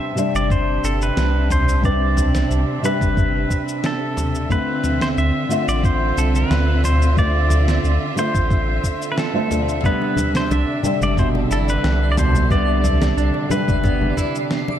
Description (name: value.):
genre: sunset chillout.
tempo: 90 BPM.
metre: 4/4.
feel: straight.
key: unclear.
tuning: A4 = 440 Hz.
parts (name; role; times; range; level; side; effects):
pedal steel guitar; melody; 0.0-14.5 s; A4 to E5; -25 LUFS; equal; digital delay.
nylon-string guitar; accompaniment; 0.0-14.8 s; C3 to E5; -22 LUFS; moving between left 3 dB and right 4 dB; auto-pan.
clear symphonic string section; sustained chords; 0.0-14.8 s; C3 to E5; -27 LUFS; equal; none.
dusty soul sampler-style drum kit; drums; 0.2-14.6 s; cabasa, snare drum, toms; -25 LUFS; equal; none.
warm sub bass; bass; 0.3-14.1 s; G1 to D2; -19 LUFS; equal; tube saturation.
electronic kick drum; drums; 0.5-14.3 s; none; -19 LUFS; equal; none.
clean electric guitar; arpeggios; 9.8-14.4 s; B2 to E4; -28 LUFS; right 4 dB; digital delay.
twinkling granular texture; texture; 10.6-14.8 s; D5 to C7; -32 LUFS; left 1 dB; built-in reverb.
congas; percussion; 10.0-14.8 s; none; -28 LUFS; left 4 dB; none.
room: light reverb.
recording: dark, warm production.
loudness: -16 LUFS.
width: side -10 dB against mid.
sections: 0.0-14.8 A section.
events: none.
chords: 0.0 Cmaj9; 4.5 Dm9; 9.8 Cmaj9.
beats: 0.51 1.17 | 1.84 2.51 3.17 3.84 | 4.51 5.17 5.84 6.51 | 7.17 7.84 8.51 9.17 | 9.84 10.51 11.17 11.84 | 12.51 13.17 13.84 14.51.